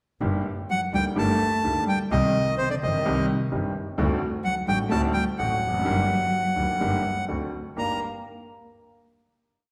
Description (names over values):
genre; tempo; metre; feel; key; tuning
tango; 127 BPM; 4/4; rubato; G harmonic minor; A4 = 440 Hz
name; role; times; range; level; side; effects
bright upright piano; accompaniment; 0.2-8.0 s; G1 to G4; -31 LUFS; equal; none
warm double bass; bass; 0.2-8.0 s; F1 to D2; -31 LUFS; equal; none
bandoneon; melody; 0.7-8.0 s; C5 to Bb5; -29 LUFS; equal; none
dark cello; second line; 0.7-8.0 s; C3 to Bb3; -32 LUFS; equal; none
room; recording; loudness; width
wet recital hall reverb, RT60 1.6 s; recorded in a church or concert hall; -25 LUFS; mono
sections
0.2-7.8 A section; 7.8-9.7 final chord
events
none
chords
0.2 Gm; 2.1 Cm; 4.0 D7; 5.9 Gm; 7.3 D7; 7.8 Gm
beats
| 0.21 0.69 1.17 1.64 | 2.11 2.58 3.05 3.52 | 3.98 4.45 4.92 5.38 | 5.85 6.32 6.80 7.29 | 7.77